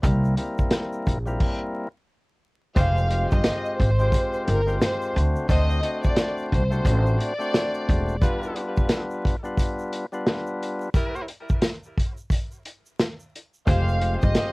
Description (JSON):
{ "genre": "hip hop, boom-bap hip-hop", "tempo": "88 BPM", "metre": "4/4", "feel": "swing 60% on 16ths", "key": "unclear", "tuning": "A4 = 440 Hz", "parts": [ { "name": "percussive tonewheel organ", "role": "accompaniment", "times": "0.0-14.5 s", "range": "G3 to C5", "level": "-29 LUFS", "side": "left 1 dB", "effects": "overdrive, high-pass filter, low-pass filter, cassette tape" }, { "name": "upright bass", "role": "bass", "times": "0.0-8.2, 13.7-14.3 s", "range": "E1 to D2", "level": "-22 LUFS", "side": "equal", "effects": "none" }, { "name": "warm soul drum kit", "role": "drums", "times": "0.0-14.5 s", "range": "crash cymbal, hi-hat, kick drum, snare drum", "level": "-23 LUFS", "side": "equal", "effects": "cassette tape" }, { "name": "tube shaker", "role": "percussion", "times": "0.0-14.5 s", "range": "none", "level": "-55 LUFS", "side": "right 2 dB", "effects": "none" }, { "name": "warm chamber violin section", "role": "melody", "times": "2.8-8.2, 13.7-14.5 s", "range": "Bb4 to F5", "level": "-28 LUFS", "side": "equal", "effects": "high-pass filter, low-pass filter" }, { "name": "warm horn section", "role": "stabs", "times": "2.8-13.9 s", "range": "G3 to C5", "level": "-34 LUFS", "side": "equal", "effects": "high-pass filter, low-pass filter, cassette tape, analog delay" } ], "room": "little or no reverb", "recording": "home recording on cassette, vinyl crackle", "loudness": "-21 LUFS", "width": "side -25 dB against mid", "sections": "0.0-2.8 A section; 2.8-14.5 B section", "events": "stop 1.4-2.8; break 8.2-13.7", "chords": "0.0 C7; 2.8 Fmadd9; 5.2 D7; 8.2 G7; 10.9 Gm6; 13.7 Fmadd9" }